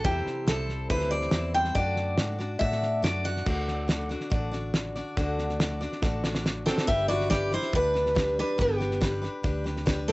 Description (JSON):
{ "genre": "honky-tonk and classic country", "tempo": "141 BPM", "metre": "4/4", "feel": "straight", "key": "G major", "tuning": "A4 = 440 Hz", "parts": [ { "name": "picked steel-string acoustic guitar", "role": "melody", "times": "0.0-3.5, 6.7-10.1 s", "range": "B3 to G5", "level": "-27 LUFS", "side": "equal", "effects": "cassette tape" }, { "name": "picked steel-string acoustic guitar", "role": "accompaniment", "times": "0.0-10.1 s", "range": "C3 to D5", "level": "-33 LUFS", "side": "left 2 dB", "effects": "cassette tape" }, { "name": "vintage muted fingered electric bass", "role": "bass", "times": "0.0-10.1 s", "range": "G1 to A2", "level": "-32 LUFS", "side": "equal", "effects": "none" }, { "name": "cloth-damped thuddy drum kit", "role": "drums", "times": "0.0-10.1 s", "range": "crash cymbal, hi-hat, kick drum, snare drum", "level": "-29 LUFS", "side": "equal", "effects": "cassette tape" } ], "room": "light reverb", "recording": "home recording on cassette, nothing above 7.9 kHz", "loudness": "-25 LUFS", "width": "side -22 dB against mid", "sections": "0.0-3.5 A section; 3.5-6.9 B section; 6.9-10.1 C section", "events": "steel-string acoustic guitar solo 0.0-3.5; drum fill 6.0-6.9", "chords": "0.1 C; 1.8 D; 6.9 G" }